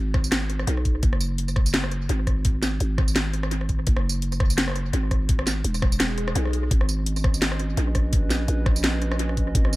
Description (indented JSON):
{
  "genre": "half-time drum and bass",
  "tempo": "169 BPM",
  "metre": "4/4",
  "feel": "swing 56% on 16ths, half-time",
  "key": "G# minor",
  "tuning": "A4 = 438 Hz",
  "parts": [
    { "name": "growling 808-style bass", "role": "bass", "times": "0.0-9.8 s", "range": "E1 to B1", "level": "-25 LUFS", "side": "equal", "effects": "none" },
    { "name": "drum and bass drum kit", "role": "drums", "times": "0.1-9.8 s", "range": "hi-hat, rim click, snare drum, tambourine", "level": "-27 LUFS", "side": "equal", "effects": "analog delay" },
    { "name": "electronic kick drum", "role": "drums", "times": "0.1-9.6 s", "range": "none", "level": "-22 LUFS", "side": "equal", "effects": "none" },
    { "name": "swell", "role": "sound effects", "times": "6.1-6.7 s", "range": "none", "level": "-34 LUFS", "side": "left 2 dB", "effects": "none" },
    { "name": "dark analog pad", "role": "sustained chords", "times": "7.1-9.8 s", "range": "C#4 to D#5", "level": "-33 LUFS", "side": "right 3 dB", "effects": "chorus, vintage 12-bit sampler grit, sidechain pumping" }
  ],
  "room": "digital ambience",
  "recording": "echo-heavy mix",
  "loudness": "-21 LUFS",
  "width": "side -19 dB against mid",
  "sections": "0.0-9.8 A section",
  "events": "kick drops out 6.0-6.7; swell 6.1-6.7",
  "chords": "0.0 G#m; 1.0 N.C.; 6.7 G#m",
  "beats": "0.32 0.68 | 1.03 1.39 1.74 2.10 | 2.45 2.81 3.16 3.52 | 3.87 4.22 4.58 4.93 | 5.29 5.64 6.00 6.36 | 6.71 7.07 7.42 7.78 | 8.13 8.48 8.84 9.20 | 9.55"
}